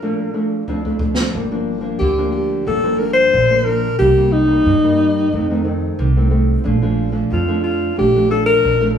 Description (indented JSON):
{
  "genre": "samba and choro",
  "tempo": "90 BPM",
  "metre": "4/4",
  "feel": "straight",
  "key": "G minor",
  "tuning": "A4 = 436 Hz",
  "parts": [
    { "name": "breathy alto saxophone", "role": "melody", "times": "0.0-8.9 s", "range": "Eb4 to C5", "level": "-15 LUFS", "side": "left 1 dB", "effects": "none" },
    { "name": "nylon-string guitar", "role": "accompaniment", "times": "0.0-9.0 s", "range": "F2 to Eb4", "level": "-20 LUFS", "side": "equal", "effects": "none" },
    { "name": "open jazz drum kit", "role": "drums", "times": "0.7-1.3 s", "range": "kick drum, snare drum", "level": "-21 LUFS", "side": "equal", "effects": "none" },
    { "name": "upright bass", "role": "bass", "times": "1.3-9.0 s", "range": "G1 to G2", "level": "-20 LUFS", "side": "right 1 dB", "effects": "none" }
  ],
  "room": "light reverb",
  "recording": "band playing live in one room, studio reverb",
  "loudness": "-14 LUFS",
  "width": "side -8 dB against mid",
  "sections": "0.0-1.3 A section; 1.3-9.0 B section",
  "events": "break 0.0-1.3; drum fill 0.7-1.3",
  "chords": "0.0 Bbmaj7; 1.3 Gm7; 4.0 Cm7; 5.3 F7; 6.7 Bbmaj7"
}